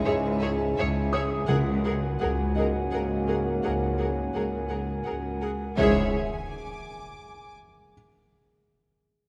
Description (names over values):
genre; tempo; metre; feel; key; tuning
cinematic, suspense film score; 84 BPM; 3/4; straight; C# dorian; A4 = 440 Hz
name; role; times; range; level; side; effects
glass harmonica; sustained chords; 0.0-6.2 s; G#4 to G#5; -38 LUFS; equal; none
mellow French horn section; sustained chords; 0.0-6.1 s; C#4 to F#4; -36 LUFS; equal; none
warm trombone section; sustained chords; 0.0-6.1 s; G#2 to A#3; -37 LUFS; equal; none
felt-muted upright piano; texture; 0.0-5.8 s; D#4 to D#6; -40 LUFS; equal; none
rich studio violin section; texture; 0.0-1.1, 5.8-7.5 s; G#5 to D6; -47 LUFS; equal; none
rich studio violin section; melody; 0.1-6.2 s; E5 to F#5; -40 LUFS; equal; none
warm studio violin section; second line; 0.1-6.2 s; A#4 to C#5; -37 LUFS; equal; none
rich studio viola section; accompaniment; 0.1-6.2 s; G#4; -34 LUFS; equal; none
rich studio cello section; bass; 0.1-6.2 s; C#2; -34 LUFS; equal; none
warm studio double bass section; bass; 0.1-6.2 s; C#2; -34 LUFS; equal; none
timpani; percussion; 1.5-2.5, 5.8-6.1 s; C#3; -33 LUFS; equal; none
impact; sound effects; 5.8-7.9 s; none; -37 LUFS; equal; none
room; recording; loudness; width
moderate scoring stage reverb, RT60 2.0 s; dark, warm production; -27 LUFS; mono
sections
0.0-5.8 A section; 5.8-7.9 B section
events
impact 5.8-7.9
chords
0.0 C#m; 1.5 F#add9/C#; 5.8 C#m